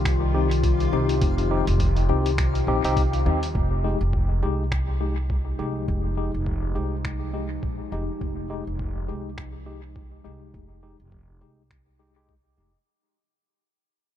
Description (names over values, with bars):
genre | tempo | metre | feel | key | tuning
ambient dub | 103 BPM | 4/4 | swing 58% on 16ths | F minor | A4 = 440 Hz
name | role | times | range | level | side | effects
warbly tape-like pad | sustained chords | 0.0-12.9 s | C3 to G4 | -32 LUFS | left 4 dB | chorus, built-in reverb
upright bass | bass | 0.0-12.7 s | F1 to Eb2 | -25 LUFS | equal | none
backwards swelling texture | texture | 0.0-3.6 s | F4 to F5 | -37 LUFS | left 3 dB | built-in reverb
electronic kick drum | drums | 0.1-12.4 s | none | -28 LUFS | equal | overdrive
lo-fi sampler-style drum kit | drums | 0.1-11.8 s | finger snaps, hi-hat | -36 LUFS | equal | overdrive, dub echo
tine electric piano | stabs | 0.3-12.7 s | Ab3 to G4 | -29 LUFS | left 3 dB | overdrive, fast stereo tremolo, low-pass filter, dub echo
room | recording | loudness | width
digital ambience | dark, warm production | -22 LUFS | side -11 dB against mid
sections
0.0-3.5 A section; 3.5-12.9 B section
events
fade-out 3.5-12.9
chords
0.0 Cm; 3.5 Fm9